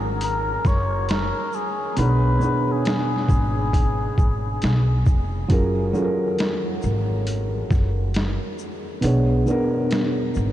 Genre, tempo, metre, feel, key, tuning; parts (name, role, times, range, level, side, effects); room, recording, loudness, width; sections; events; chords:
lo-fi hip hop; 68 BPM; 4/4; swing 65% on 16ths; F# major; A4 = 441 Hz
felt-muted upright piano; accompaniment; 0.0-10.5 s; B2 to C#5; -24 LUFS; right 1 dB; cassette tape
upright bass; bass; 0.0-10.5 s; E#1 to B1; -23 LUFS; equal
trumpet with cup mute; melody; 0.2-5.1 s; G#4 to C#5; -27 LUFS; left 2 dB; ping-pong delay
boom bap sampler-style drum kit; drums; 0.2-10.5 s; hi-hat, kick drum, shaker, snare drum; -24 LUFS; equal; overdrive
moderate huge ambient reverb, RT60 7.6 s; dreamy mix soaked in reverb, cassette tape; -19 LUFS; side -13 dB against mid
0.0-10.5 A section
0.0 F#maj9; 2.0 Bm6; 5.5 F#maj9; 9.0 Bm6